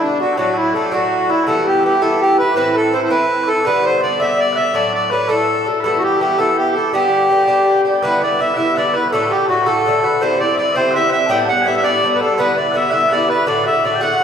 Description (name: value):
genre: celtic folk, Celtic jig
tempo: 110 BPM (dotted quarters)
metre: 6/8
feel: straight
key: G major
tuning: A4 = 438 Hz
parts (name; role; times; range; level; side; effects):
- accordion; melody; 0.0-14.2 s; D4 to G5; -16 LUFS; right 1 dB; none
- mellow small bagpipes; second line; 0.0-14.2 s; D4 to A5; -21 LUFS; left 2 dB; none
- Irish bouzouki; accompaniment; 0.0-14.2 s; G2 to F#4; -19 LUFS; left 1 dB; none
room: wet recital hall reverb, RT60 1.7 s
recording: heard from further back in the room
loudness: -13 LUFS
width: side -8 dB against mid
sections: 0.0-8.0 A section; 8.0-14.2 B section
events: none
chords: 0.4 D; 1.5 Em; 2.6 Am; 3.7 G; 4.7 D; 5.8 Em; 6.9 G; 8.0 Em7; 9.1 D; 10.2 Cadd9; 11.3 Gadd9; 12.4 Em7; 13.5 D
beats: | 0.37 0.92 | 1.46 2.01 | 2.56 3.10 | 3.65 4.20 | 4.75 5.29 | 5.84 6.39 | 6.93 7.48 | 8.03 8.57 | 9.12 9.66 | 10.21 10.75 | 11.30 11.84 | 12.39 12.93 | 13.47 14.02